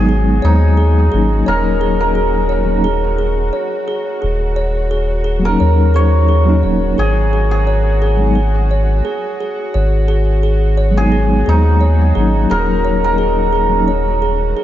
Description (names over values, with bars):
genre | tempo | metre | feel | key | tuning
trip hop | 87 BPM | 4/4 | straight | G# minor | A4 = 440 Hz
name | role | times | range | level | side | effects
cimbalom | melody | 0.0-14.6 s | D#4 to C#5 | -19 LUFS | equal | tape echo
mellow tine electric piano | accompaniment | 0.0-13.9 s | F#3 to D#4 | -19 LUFS | left 1 dB | medium stereo tremolo, vintage 12-bit sampler grit, tape echo
music box | arpeggios | 0.0-14.6 s | G#4 to C#5 | -22 LUFS | right 1 dB | vintage 12-bit sampler grit, analog delay
soft dub sub bass | bass | 0.0-14.5 s | D#1 to D#2 | -14 LUFS | equal | none
bowed-like drone | texture | 0.0-14.6 s | F#4 | -29 LUFS | left 2 dB | built-in reverb
room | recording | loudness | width
moderate cathedral reverb, RT60 5.1 s | dreamy mix soaked in reverb, nothing above 7.7 kHz | -12 LUFS | side -12 dB against mid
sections
0.0-14.6 A section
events
none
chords
0.0 G#m7; 1.5 D#m7; 7.0 G#m7; 12.5 D#m7